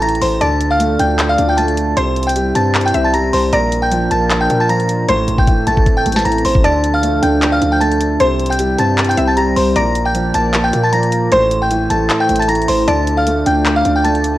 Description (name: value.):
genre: hip hop, trap.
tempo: 154 BPM.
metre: 4/4.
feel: half-time.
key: D minor.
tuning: A4 = 440 Hz.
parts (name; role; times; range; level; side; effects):
delicate synth tine bell; melody; 0.0-14.4 s; C5 to Bb6; -16 LUFS; left 1 dB; chorus, cassette tape.
dark concert grand piano; accompaniment; 0.0-14.4 s; A2 to D4; -18 LUFS; right 2 dB; cassette tape.
hard-hitting 808-style bass; bass; 0.0-14.4 s; A1 to Bb2; -20 LUFS; equal; none.
trap drum kit; drums; 0.0-14.3 s; handclaps, hi-hat, kick drum, snare drum; -19 LUFS; equal; cassette tape.
mallet-like synth pluck; second line; 0.4-13.2 s; C5 to E5; -20 LUFS; left 1 dB; chorus, cassette tape, analog delay.
dark analog pad; sustained chords; 0.8-14.4 s; E3 to D5; -24 LUFS; left 1 dB; chorus, cassette tape.
room: light reverb, digital ambience.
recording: home recording on cassette.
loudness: -12 LUFS.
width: side -15 dB against mid.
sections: 0.0-6.6 A section; 6.6-14.4 A section.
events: drum fill 5.1-6.6.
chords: 0.4 Dm; 2.0 C; 3.5 Bb; 5.1 Am; 6.6 Dm; 8.2 C; 9.8 Bb; 11.3 Am; 12.9 Dm.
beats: 0.02 | 0.41 0.80 1.19 1.58 | 1.97 2.36 2.75 3.14 | 3.53 3.92 4.30 4.70 | 5.08 5.47 5.86 6.25 | 6.64 7.03 7.42 7.81 | 8.20 8.59 8.98 9.37 | 9.76 10.15 10.54 10.93 | 11.32 11.71 12.10 12.49 | 12.88 13.27 13.66 14.04.